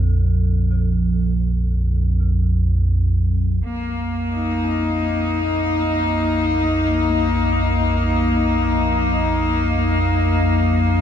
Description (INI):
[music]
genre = dark ambient drone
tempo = free time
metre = none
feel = none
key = unclear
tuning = A4 = 445 Hz
[part]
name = dark detuned synth bell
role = arpeggios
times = 0.0-11.0 s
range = C4 to A4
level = -44 LUFS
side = left 1 dB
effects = none
[part]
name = analog drone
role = drone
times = 0.0-11.0 s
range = Bb1 to F2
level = -19 LUFS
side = right 1 dB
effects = lush chorus
[part]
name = clear chamber cello section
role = sustained chords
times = 3.6-11.0 s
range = Bb3 to Eb4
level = -19 LUFS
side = left 3 dB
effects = none
[sound]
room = moderate huge ambient reverb, RT60 8.1 s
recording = dark, warm production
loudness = -17 LUFS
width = side -9 dB against mid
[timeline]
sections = 0.0-3.6 A section; 3.6-11.0 B section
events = filter sweep on synth drone 3.6-11.0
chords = 0.0 Bb5; 3.6 Bbsus2